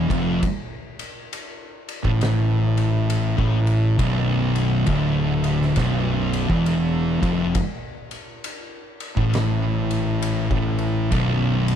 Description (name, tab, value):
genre	stoner and doom metal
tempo	67 BPM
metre	4/4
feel	swing 63% on 8ths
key	B minor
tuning	A4 = 440 Hz
part	thick fuzz guitar	riff	0.0-11.8 s	B1 to A2	-22 LUFS	left 7 dB	distortion
part	thick fuzz guitar	riff	0.0-11.8 s	B1 to A2	-23 LUFS	right 9 dB	distortion
part	fuzz fingered electric bass	bass	0.0-11.8 s	B0 to A1	-26 LUFS	equal	overdrive
part	oversized low-tuned drum kit	drums	0.1-11.8 s	kick drum, ride cymbal, snare drum	-28 LUFS	equal	none
room	little or no reverb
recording	none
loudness	-19 LUFS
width	side -9 dB against mid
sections	0.0-11.8 A section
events	none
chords	0.0 Bm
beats	| 0.42 1.31 2.20 3.09 | 3.98 4.88 5.77 6.66 | 7.55 8.44 9.33 10.22 | 11.12